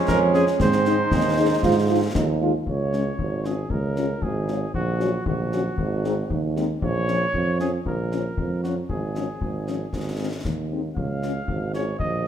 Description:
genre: military-style march for wind band.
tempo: 116 BPM.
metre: 2/4.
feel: straight.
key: Db major.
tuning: A4 = 441 Hz.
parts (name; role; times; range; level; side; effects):
bright trombone section; sustained chords; 0.0-2.4 s; Ab3 to Eb4; -26 LUFS; right 2 dB; none.
mellow cornet; melody; 0.1-12.3 s; Gb4 to F5; -30 LUFS; right 1 dB; none.
clear euphonium; second line; 0.1-2.5 s; C4 to F4; -25 LUFS; right 4 dB; none.
clear tuba; bass; 0.1-12.3 s; Ab1 to Ab2; -24 LUFS; right 2 dB; none.
concert snare drum and concert bass drum; drums; 0.1-12.2 s; none; -29 LUFS; left 2 dB; none.
dark French horn section; accompaniment; 0.3-11.8 s; F3 to Ab4; -29 LUFS; left 6 dB; none.
room: moderate large studio reverb, RT60 1.4 s.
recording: none.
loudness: -21 LUFS.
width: side -9 dB against mid.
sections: 0.0-2.7 A section; 2.7-12.3 B section.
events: none.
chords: 0.0 Db/F; 0.6 Ab; 2.7 Db; 4.7 Gb/Bb; 5.8 Ab; 6.8 Bbm; 8.9 Db/Ab; 9.9 Ab; 11.0 Db.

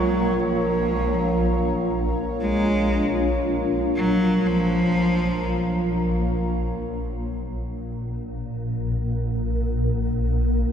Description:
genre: dark ambient drone.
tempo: free time.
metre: none.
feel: none.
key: Bb minor.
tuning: A4 = 441 Hz.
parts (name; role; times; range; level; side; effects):
warm cello; melody; 0.0-6.0 s; F3 to Ab3; -24 LUFS; equal; ping-pong delay.
dark analog pad; sustained chords; 0.0-6.6 s; F4 to Bb5; -28 LUFS; right 1 dB; chorus.
swarming drone; drone; 0.0-10.7 s; Bb1 to Bb2; -24 LUFS; equal; built-in reverb.
bubbling stepped-filter texture; texture; 0.0-6.6 s; Db5; -32 LUFS; right 2 dB; chorus, built-in reverb.
room: wet cathedral reverb, RT60 5.9 s.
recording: dark, warm production.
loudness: -21 LUFS.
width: side -8 dB against mid.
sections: 0.0-6.6 A section; 6.6-10.7 B section.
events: none.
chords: 0.0 Bb5; 6.6 N.C..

